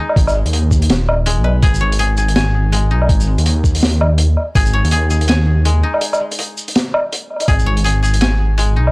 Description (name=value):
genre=half-time drum and bass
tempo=164 BPM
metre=4/4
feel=swing 58% on 16ths, half-time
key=G# minor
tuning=A4 = 440 Hz
part: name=koto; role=arpeggios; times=0.0-8.9 s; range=G#3 to G#5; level=-22 LUFS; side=left 2 dB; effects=analog delay
part: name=crunchy breakbeat drum kit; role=drums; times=0.1-8.9 s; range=hi-hat, shaker, snare drum, woodblock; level=-18 LUFS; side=equal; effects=none
part: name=dark detuned saw bass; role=bass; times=0.2-8.9 s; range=D#1 to D#2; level=-14 LUFS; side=equal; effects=none
part: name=electronic kick drum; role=drums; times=0.2-4.6, 7.5-7.6 s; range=none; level=-13 LUFS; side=equal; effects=none
room=small room ambience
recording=dry, gritty hardware recording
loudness=-12 LUFS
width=side -26 dB against mid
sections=0.0-8.9 A section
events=break 6.0-7.5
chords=0.0 G#m